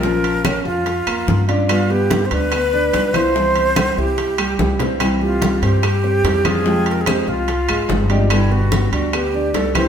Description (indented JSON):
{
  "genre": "latin, Cuban son and guajira",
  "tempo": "145 BPM",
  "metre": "4/4",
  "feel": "straight",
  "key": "unclear",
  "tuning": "A4 = 442 Hz",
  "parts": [
    { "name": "breathy hollow jazz flute", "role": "melody", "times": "0.0-9.9 s", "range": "E4 to C5", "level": "-20 LUFS", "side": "right 1 dB", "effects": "none" },
    { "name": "nylon-string guitar", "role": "accompaniment", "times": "0.0-9.9 s", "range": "B2 to G4", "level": "-23 LUFS", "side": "left 1 dB", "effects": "none" },
    { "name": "warm concert grand piano", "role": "arpeggios", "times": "0.0-9.9 s", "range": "E3 to F5", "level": "-23 LUFS", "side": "equal", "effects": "none" },
    { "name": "upright bass", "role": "bass", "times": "0.0-9.9 s", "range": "G1 to G2", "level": "-21 LUFS", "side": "equal", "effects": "none" },
    { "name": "bongos", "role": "percussion", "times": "0.0-9.9 s", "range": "none", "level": "-30 LUFS", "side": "left 4 dB", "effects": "none" },
    { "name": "congas", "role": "percussion", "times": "0.0-9.9 s", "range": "none", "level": "-25 LUFS", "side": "equal", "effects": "none" },
    { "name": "timbales", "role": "percussion", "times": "0.2-9.9 s", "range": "none", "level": "-26 LUFS", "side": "right 5 dB", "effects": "none" },
    { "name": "claves", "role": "percussion", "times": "0.5-9.9 s", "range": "none", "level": "-30 LUFS", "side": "left 5 dB", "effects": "none" }
  ],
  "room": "wet stone room reverb, RT60 1.3 s",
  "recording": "band playing live in one room",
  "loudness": "-15 LUFS",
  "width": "side -8 dB against mid",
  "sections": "0.0-9.9 A section",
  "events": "drum fill 4.6-5.0",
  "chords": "0.0 Bbm; 1.7 G7; 3.4 C; 6.7 Fmadd9; 8.3 G",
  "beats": "| 0.04 0.45 0.86 1.28 | 1.69 2.11 2.52 2.94 | 3.35 3.76 4.18 4.59 | 5.00 5.42 5.83 6.24 | 6.66 7.07 7.48 7.89 | 8.31 8.72 9.13 9.54"
}